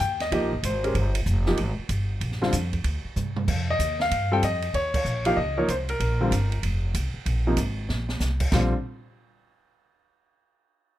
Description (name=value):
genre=jazz piano trio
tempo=190 BPM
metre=4/4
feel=swing 64% on 8ths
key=unclear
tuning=A4 = 440 Hz
part: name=warm grand piano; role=melody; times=0.0-8.7 s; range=C3 to G5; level=-25 LUFS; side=left 1 dB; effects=plate reverb
part: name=upright bass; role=bass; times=0.0-8.7 s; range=F1 to G2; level=-26 LUFS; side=equal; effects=none
part: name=open jazz drum kit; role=drums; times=0.0-8.6 s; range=crash cymbal, hi-hat, kick drum, ride cymbal, snare drum, toms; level=-31 LUFS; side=right 2 dB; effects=none
room=little or no reverb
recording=close, detailed microphones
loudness=-23 LUFS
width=side -13 dB against mid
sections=0.0-8.5 A section; 8.5-9.8 B section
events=drum fill 3.2-3.5, 7.9-8.2; band accent 4.9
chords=0.0 Eb69; 2.2 Bb6; 3.5 F7sus2; 4.7 Eb7sus2; 6.0 Bb7sus2; 8.5 N.C.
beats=0.01 0.32 0.64 | 0.95 1.27 1.58 1.90 | 2.22 2.53 2.85 3.16 | 3.48 3.79 4.11 4.42 | 4.74 5.06 5.37 5.69 | 6.00 6.32 6.63 6.95 | 7.26 7.58 7.89 8.21 | 8.53